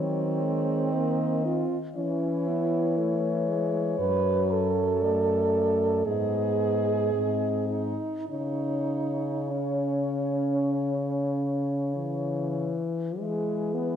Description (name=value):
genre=classical, lyrical piece for horn quartet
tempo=48-60 BPM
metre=4/4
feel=rubato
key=C# minor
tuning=A4 = 445 Hz
part: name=mellow French horn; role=melody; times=0.0-14.0 s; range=B4 to D#5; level=-33 LUFS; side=left 8 dB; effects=none
part: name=mellow French horn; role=second line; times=0.0-14.0 s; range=C4 to B4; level=-28 LUFS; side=right 5 dB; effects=none
part: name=mellow French horn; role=accompaniment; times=0.0-14.0 s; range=E3 to C#4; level=-32 LUFS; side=left 3 dB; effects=none
part: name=mellow French horn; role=bass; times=0.0-14.0 s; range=F#2 to E3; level=-30 LUFS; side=equal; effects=none
room=moderate scoring stage reverb, RT60 1.6 s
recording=dark, warm production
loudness=-24 LUFS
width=side -9 dB against mid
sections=0.0-13.2 A section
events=none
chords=0.0 Cdim/Eb; 2.0 C#m/E; 4.0 D/F#; 6.1 G#m; 7.1 G#; 8.3 C#m; 13.2 E